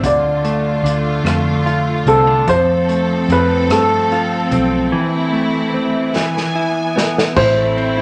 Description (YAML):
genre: six-eight pop ballad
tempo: 49 BPM (dotted quarters)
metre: 6/8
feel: straight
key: A minor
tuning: A4 = 439 Hz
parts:
  - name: direct-recorded clean electric guitar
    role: accompaniment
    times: 0.0-8.0 s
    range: A2 to F4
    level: -21 LUFS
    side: equal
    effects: none
  - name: clear studio string section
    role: sustained chords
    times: 0.0-8.0 s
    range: D3 to G#5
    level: -23 LUFS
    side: equal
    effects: none
  - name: vintage muted fingered electric bass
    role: bass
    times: 0.0-8.0 s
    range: A1 to G2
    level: -24 LUFS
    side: equal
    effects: none
  - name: unplugged drum kit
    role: drums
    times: 0.0-8.0 s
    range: crash cymbal, hi-hat, kick drum, ride cymbal, rim click, snare drum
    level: -24 LUFS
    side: equal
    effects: none
  - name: warm baby grand piano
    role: melody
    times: 0.1-8.0 s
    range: A4 to D5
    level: -18 LUFS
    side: equal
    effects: none
room: wet large studio reverb, RT60 1.4 s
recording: none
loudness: -16 LUFS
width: mono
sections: 0.0-7.4 A section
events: break 4.9-7.4; drum fill 6.1-7.4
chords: 0.0 Dm; 2.5 F; 4.9 Am/E; 6.1 E; 7.4 Am